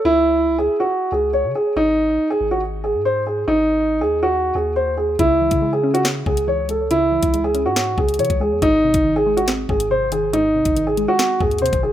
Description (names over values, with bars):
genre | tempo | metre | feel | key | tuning
hip hop, drill | 140 BPM | 4/4 | half-time | C# harmonic minor | A4 = 441 Hz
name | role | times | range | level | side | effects
long sustained 808-style bass | bass | 0.0-11.9 s | G#1 to C#3 | -27 LUFS | left 1 dB | none
dark baby grand piano | melody | 0.1-11.9 s | D#4 to C#5 | -17 LUFS | right 1 dB | tape echo
soft round pluck | accompaniment | 5.2-11.9 s | G#2 to C#5 | -27 LUFS | left 2 dB | chorus
drill drum kit | drums | 5.2-11.8 s | hi-hat, kick drum, snare drum | -22 LUFS | left 1 dB | none
room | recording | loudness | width
light reverb, digital ambience | rough home demo mix | -16 LUFS | side -11 dB against mid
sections
0.0-11.9 A section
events
none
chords
0.0 C#m; 1.8 G#5; 5.2 C#m; 8.6 G#